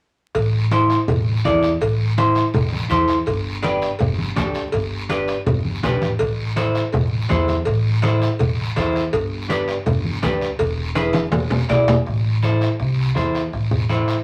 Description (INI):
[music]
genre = latin, cumbia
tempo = 164 BPM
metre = 4/4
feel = straight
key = A minor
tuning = A4 = 438 Hz
[part]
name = bombo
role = percussion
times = 0.3-14.2 s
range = none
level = -34 LUFS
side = equal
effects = none
[part]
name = congas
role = percussion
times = 0.3-14.1 s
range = none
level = -26 LUFS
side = equal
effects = none
[part]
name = cowbell and timbales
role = percussion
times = 0.3-12.0 s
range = none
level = -28 LUFS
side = equal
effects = none
[part]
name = guiro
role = percussion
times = 0.3-14.2 s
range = none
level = -35 LUFS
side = equal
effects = none
[part]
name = upright bass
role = bass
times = 0.4-14.1 s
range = E1 to E2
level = -24 LUFS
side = equal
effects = none
[part]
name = semi-hollow electric guitar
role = accompaniment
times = 0.7-14.2 s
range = D4 to D5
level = -23 LUFS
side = equal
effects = none
[sound]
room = wet club reverb, RT60 0.7 s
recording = vinyl crackle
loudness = -20 LUFS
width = mono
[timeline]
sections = 0.3-12.1 A section; 12.1-14.2 B section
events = drum fill 11.0-12.1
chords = 0.3 Am; 3.3 G; 6.2 Am; 9.1 G; 10.6 E7; 12.1 Am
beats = | 0.35 0.71 1.08 1.45 | 1.81 2.18 2.54 2.91 | 3.27 3.64 4.01 4.37 | 4.74 5.10 5.47 5.84 | 6.20 6.57 6.93 7.30 | 7.67 8.03 8.40 8.76 | 9.13 9.50 9.86 10.23 | 10.60 10.96 11.33 11.70 | 12.06 12.43 12.80 13.16 | 13.53 13.90